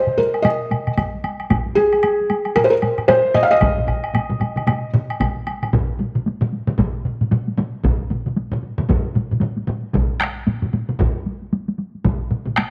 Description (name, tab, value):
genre	japanese traditional, taiko drum ensemble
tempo	114 BPM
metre	4/4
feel	swing 60% on 16ths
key	unclear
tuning	A4 = 440 Hz
part	felt-muted upright piano	melody	0.0-4.9 s	Ab4 to F5	-19 LUFS	equal	none
part	taiko ensemble	percussion	0.1-12.7 s	none	-27 LUFS	equal	none
part	taiko ensemble	percussion	0.1-12.7 s	none	-27 LUFS	equal	none
part	woodblock	percussion	0.3-5.7 s	none	-28 LUFS	equal	none
part	taiko ensemble	percussion	1.0-12.2 s	none	-25 LUFS	equal	none
part	taiko ensemble	percussion	1.5-12.7 s	none	-27 LUFS	equal	none
room	wet echo chamber reverb, RT60 1.4 s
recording	none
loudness	-20 LUFS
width	mono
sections	0.0-5.7 A section; 5.7-12.7 B section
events	none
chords	none